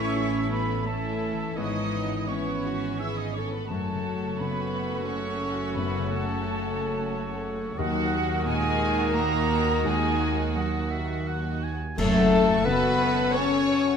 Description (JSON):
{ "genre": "cinematic, emotional film score for orchestra", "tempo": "87 BPM", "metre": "3/4", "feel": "rubato", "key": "unclear", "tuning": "A4 = 442 Hz", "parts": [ { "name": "dark studio violin section", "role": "melody", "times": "0.0-14.0 s", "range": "E4 to C#5", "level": "-34 LUFS", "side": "left 3 dB", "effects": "none" }, { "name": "bright flute section", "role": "second line", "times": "0.0-14.0 s", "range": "F#5 to E6", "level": "-33 LUFS", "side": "right 3 dB", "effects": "none" }, { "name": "warm clarinet", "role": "second line", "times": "0.0-11.6 s", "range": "A4 to B4", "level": "-38 LUFS", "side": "equal", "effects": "none" }, { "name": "warm oboe", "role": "second line", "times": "0.0-13.9 s", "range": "A4 to G#5", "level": "-36 LUFS", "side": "right 2 dB", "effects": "none" }, { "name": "warm studio violin section", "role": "second line", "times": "0.0-14.0 s", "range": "F#4 to C#6", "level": "-37 LUFS", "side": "left 6 dB", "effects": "none" }, { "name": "rich studio viola section", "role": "accompaniment", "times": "0.0-14.0 s", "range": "D#3 to A4", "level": "-35 LUFS", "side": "right 2 dB", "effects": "none" }, { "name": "warm concert grand piano", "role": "accompaniment", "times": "0.0-14.0 s", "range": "D#2 to B3", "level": "-33 LUFS", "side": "left 3 dB", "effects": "none" }, { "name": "warm French horn section", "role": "sustained chords", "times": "0.0-14.0 s", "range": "C#3 to B4", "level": "-30 LUFS", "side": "left 4 dB", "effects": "none" }, { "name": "concert harp", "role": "arpeggios", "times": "0.0-14.0 s", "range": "F#2 to F#5", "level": "-36 LUFS", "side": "left 9 dB", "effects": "none" }, { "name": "warm symphonic cello section", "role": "bass", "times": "0.0-12.6 s", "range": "F#2 to E4", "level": "-33 LUFS", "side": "right 4 dB", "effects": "none" }, { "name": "warm symphonic double bass section", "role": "bass", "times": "0.0-12.6 s", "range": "F#1 to D#2", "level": "-32 LUFS", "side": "right 4 dB", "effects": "none" }, { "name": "clash cymbals and concert bass drum", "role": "percussion", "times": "12.0-13.3 s", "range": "none", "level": "-35 LUFS", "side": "right 1 dB", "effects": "none" } ], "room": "moderate scoring stage reverb, RT60 1.9 s", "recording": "none", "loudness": "-24 LUFS", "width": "side -7 dB against mid", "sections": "0.0-12.0 A section; 12.0-14.0 B section", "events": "band accent 12.0-12.7", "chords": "0.0 A; 1.6 C#m7/G#; 3.7 F#m; 7.8 D#m; 12.0 F#m" }